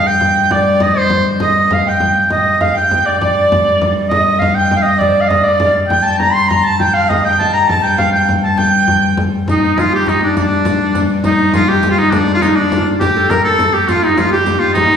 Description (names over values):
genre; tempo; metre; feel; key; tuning
medieval dance; 134 BPM (dotted quarters); 6/8; straight; G minor; A4 = 441 Hz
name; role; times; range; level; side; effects
clear shawm; melody; 0.0-15.0 s; D4 to C6; -13 LUFS; right 1 dB; none
Celtic harp; second line; 0.0-15.0 s; D4 to C6; -20 LUFS; right 1 dB; none
bright reedy tenor recorder; second line; 0.0-15.0 s; D4 to C6; -21 LUFS; left 3 dB; none
rich viola da gamba; drone; 0.0-15.0 s; G2; -19 LUFS; left 3 dB; none
frame drum; percussion; 0.2-15.0 s; none; -20 LUFS; left 1 dB; none
riq; percussion; 9.5-15.0 s; none; -24 LUFS; right 1 dB; none
room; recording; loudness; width
wet recital hall reverb, RT60 1.6 s; recorded in a church or concert hall, studio ambience; -11 LUFS; side -7 dB against mid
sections
0.0-2.3 A section; 2.3-9.5 B section; 9.5-15.0 B section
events
speeding up 0.0-15.0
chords
none